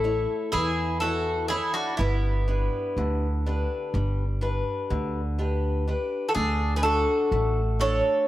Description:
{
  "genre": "greek folk, Greek bouzouki band",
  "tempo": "124 BPM (eighths)",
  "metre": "9/8",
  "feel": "straight",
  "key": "unclear",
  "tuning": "A4 = 439 Hz",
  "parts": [
    { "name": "Greek bouzouki", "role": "melody", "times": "0.0-8.3 s", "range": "E4 to C#5", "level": "-26 LUFS", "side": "equal", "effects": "none" },
    { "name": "Greek bouzouki", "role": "second line", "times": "0.0-8.3 s", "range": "B3 to A4", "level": "-32 LUFS", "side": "right 3 dB", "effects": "none" },
    { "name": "picked old ladder-braced acoustic guitar", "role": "accompaniment", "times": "0.0-8.3 s", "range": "D3 to C#5", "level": "-31 LUFS", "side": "left 2 dB", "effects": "none" },
    { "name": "upright bass", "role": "bass", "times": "0.0-8.0 s", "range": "G1 to E2", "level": "-26 LUFS", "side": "equal", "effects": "none" }
  ],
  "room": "light reverb",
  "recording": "heard from further back in the room",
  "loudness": "-23 LUFS",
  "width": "side -14 dB against mid",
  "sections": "0.0-8.3 A section",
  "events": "none",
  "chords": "0.0 A; 2.0 G; 6.4 D"
}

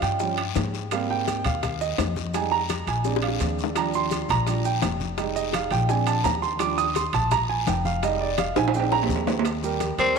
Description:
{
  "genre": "Afro-Cuban jazz",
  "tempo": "169 BPM",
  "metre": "4/4",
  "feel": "straight",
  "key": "Eb major",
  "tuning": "A4 = 438 Hz",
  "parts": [
    { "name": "warm concert grand piano", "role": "accompaniment", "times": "0.0-10.2 s", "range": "F3 to Eb6", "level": "-25 LUFS", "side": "right 7 dB", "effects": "none" },
    { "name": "upright bass", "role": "bass", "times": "0.0-10.2 s", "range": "F1 to Ab2", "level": "-28 LUFS", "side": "left 2 dB", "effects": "none" },
    { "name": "bongos", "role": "percussion", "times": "0.0-10.2 s", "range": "none", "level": "-32 LUFS", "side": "left 14 dB", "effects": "none" },
    { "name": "congas", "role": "percussion", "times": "0.0-10.2 s", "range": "none", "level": "-34 LUFS", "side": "left 3 dB", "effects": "none" },
    { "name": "guiro", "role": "percussion", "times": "0.0-10.2 s", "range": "none", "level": "-38 LUFS", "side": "left 15 dB", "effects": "none" },
    { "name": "maracas", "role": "percussion", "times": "0.0-10.2 s", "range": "none", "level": "-42 LUFS", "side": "right 11 dB", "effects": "none" },
    { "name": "timbales", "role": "percussion", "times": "0.0-10.2 s", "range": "none", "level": "-31 LUFS", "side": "right 8 dB", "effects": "none" },
    { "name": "growling tenor saxophone", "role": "melody", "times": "10.0-10.2 s", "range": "C4", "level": "-19 LUFS", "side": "left 2 dB", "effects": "none" },
    { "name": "breathy tenor saxophone", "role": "second line", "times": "10.0-10.2 s", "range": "C4", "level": "-32 LUFS", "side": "left 14 dB", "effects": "none" }
  ],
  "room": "moderate echo chamber reverb, RT60 2.3 s",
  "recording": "1960s-style stereo with parts hard left and right",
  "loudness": "-22 LUFS",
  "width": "side -5 dB against mid",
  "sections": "0.0-9.4 A section",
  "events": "grand piano solo 0.0-9.4; drum fill 3.1-3.8, 8.4-9.4",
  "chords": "0.0 Eb7 (rootless); 0.9 Abmaj7; 2.3 Fm7; 3.1 Bb7; 3.8 Ebmaj7; 5.2 Fm7; 5.9 Bb7; 6.6 Ebmaj7; 8.0 Fm7; 8.7 Bb7; 9.4 Eb"
}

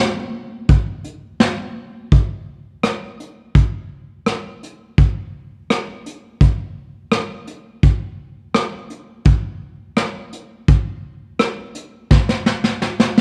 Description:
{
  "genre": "country",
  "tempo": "84 BPM",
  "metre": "4/4",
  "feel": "straight",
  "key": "none",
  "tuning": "none",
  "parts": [
    { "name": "vintage brush drum kit", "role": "drums", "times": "0.7-13.2 s", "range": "hi-hat, kick drum, rim click, snare drum", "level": "-17 LUFS", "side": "equal", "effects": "none" }
  ],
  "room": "light reverb",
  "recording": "dark, warm production",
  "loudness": "-19 LUFS",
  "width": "mono",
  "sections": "0.0-2.1 A section; 2.1-13.2 B section",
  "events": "drum fill 12.1-13.2",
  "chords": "none"
}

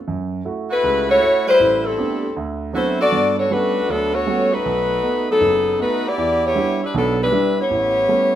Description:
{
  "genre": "jazz",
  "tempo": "157 BPM",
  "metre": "4/4",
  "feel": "swing 65% on 8ths",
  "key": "unclear",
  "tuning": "A4 = 437 Hz",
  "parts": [
    { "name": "warm concert grand piano", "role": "accompaniment", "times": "0.1-8.3 s", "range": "F#1 to G4", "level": "-23 LUFS", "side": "right 4 dB", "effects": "plate reverb" },
    { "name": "bright saxophone section", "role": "melody", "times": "0.7-8.4 s", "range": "F#3 to D5", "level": "-16 LUFS", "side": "left 1 dB", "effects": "plate reverb" }
  ],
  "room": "wet studio reverb, RT60 0.7 s",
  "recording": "rough home demo mix",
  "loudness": "-16 LUFS",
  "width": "side -11 dB against mid",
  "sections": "0.0-8.4 A section",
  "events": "none",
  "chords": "0.1 F#m7; 1.6 Am11; 2.4 D13; 3.1 Gmaj9#11; 4.6 B7; 6.2 Em7; 7.7 A9"
}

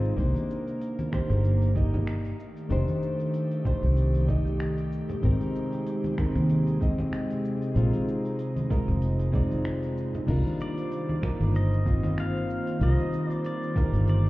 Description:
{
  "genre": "sunset chillout",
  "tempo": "95 BPM",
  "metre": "4/4",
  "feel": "swing 56% on 16ths",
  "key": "C minor",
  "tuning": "A4 = 441 Hz",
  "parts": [
    { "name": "flamenco guitar", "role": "accompaniment", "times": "0.0-14.3 s", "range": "G3 to Eb5", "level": "-32 LUFS", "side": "equal", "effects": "auto-pan, vintage 12-bit sampler grit, low-pass filter, digital delay" },
    { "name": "airy breathy pad", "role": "sustained chords", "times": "0.0-14.3 s", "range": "C3 to C5", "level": "-32 LUFS", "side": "equal", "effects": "chorus" },
    { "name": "fingered electric bass", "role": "bass", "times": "0.0-14.3 s", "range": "F1 to Eb2", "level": "-25 LUFS", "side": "equal", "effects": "tube saturation" },
    { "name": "deep house drum kit", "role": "drums", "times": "0.0-14.3 s", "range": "cabasa, crash cymbal, finger snaps, hi-hat", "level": "-47 LUFS", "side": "equal", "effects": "none" },
    { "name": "electronic kick drum", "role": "drums", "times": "0.2-13.9 s", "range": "none", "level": "-28 LUFS", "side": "equal", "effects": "none" },
    { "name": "congas and bongos", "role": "percussion", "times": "0.3-13.9 s", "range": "none", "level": "-35 LUFS", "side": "equal", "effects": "none" },
    { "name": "pedal steel guitar", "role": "melody", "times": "10.6-14.3 s", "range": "D5 to F5", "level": "-38 LUFS", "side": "left 1 dB", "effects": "digital delay" }
  ],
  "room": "moderate concert hall reverb, RT60 2.3 s",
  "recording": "heard muffled through a wall, club reverb, EQ",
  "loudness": "-24 LUFS",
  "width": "side -18 dB against mid",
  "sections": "0.0-10.3 A section; 10.3-14.3 B section",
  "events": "none",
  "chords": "0.2 Cm9; 2.4 F13 (rootless); 5.2 Abmaj7; 7.8 Bb9sus4; 10.3 Cm11"
}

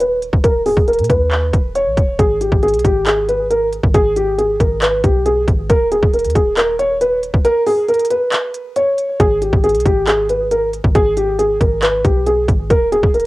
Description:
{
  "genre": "hip hop, trap",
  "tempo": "137 BPM",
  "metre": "4/4",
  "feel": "half-time",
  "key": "G# harmonic minor",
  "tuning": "A4 = 440 Hz",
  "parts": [
    { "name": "dark concert grand piano", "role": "melody", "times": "0.0-13.3 s", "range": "G4 to C#5", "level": "-15 LUFS", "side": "equal", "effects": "low-pass filter, cassette tape" },
    { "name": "warm 808-style bass", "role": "bass", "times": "0.0-13.3 s", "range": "D#1 to A#2", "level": "-22 LUFS", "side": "equal", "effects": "none" },
    { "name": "trap drum kit", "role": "drums", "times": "0.0-13.2 s", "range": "handclaps, hi-hat, kick drum", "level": "-16 LUFS", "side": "equal", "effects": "overdrive, cassette tape" }
  ],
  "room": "light reverb",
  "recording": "home recording on cassette",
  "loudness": "-13 LUFS",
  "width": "side -19 dB against mid",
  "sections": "0.0-13.3 A section",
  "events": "filter sweep on grand piano 0.0-2.2; kick muted 7.4-9.2",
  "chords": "0.0 D#5; 2.2 G#m; 5.7 Bmaj7/D#; 9.2 G#m; 12.7 D#5"
}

